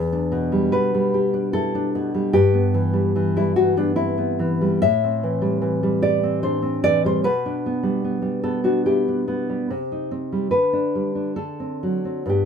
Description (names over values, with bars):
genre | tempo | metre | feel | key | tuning
romantic piece for solo classical guitar | 60-76 BPM | 3/4 | rubato | G major | A4 = 441 Hz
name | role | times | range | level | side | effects
nylon-string guitar | solo | 0.0-12.5 s | E2 to E5 | -19 LUFS | equal | none
room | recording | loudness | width
light reverb | band playing live in one room | -19 LUFS | side -7 dB against mid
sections
0.0-12.5 A section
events
none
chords
0.0 Em7; 2.4 Em/G; 4.8 Am7; 7.2 G/B; 9.7 Cm; 10.5 G/D; 11.4 D7